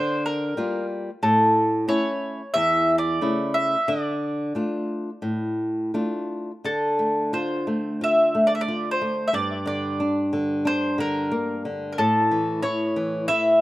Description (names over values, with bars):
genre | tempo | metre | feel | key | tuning
fado | 89 BPM | 4/4 | uneven beats, rubato | D minor | A4 = 440 Hz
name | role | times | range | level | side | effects
mandolin | melody | 0.0-13.6 s | A4 to E5 | -22 LUFS | equal | slapback echo
flamenco guitar | accompaniment | 0.0-13.6 s | E2 to F4 | -25 LUFS | equal | slapback echo
room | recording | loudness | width
little or no reverb | recorded outdoors, with no room sound | -21 LUFS | side -16 dB against mid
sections
0.0-6.6 A section; 6.6-13.6 A section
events
none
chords
0.0 Gm7; 1.2 A; 3.9 Dm; 6.6 Dm7; 9.3 Gm; 12.0 A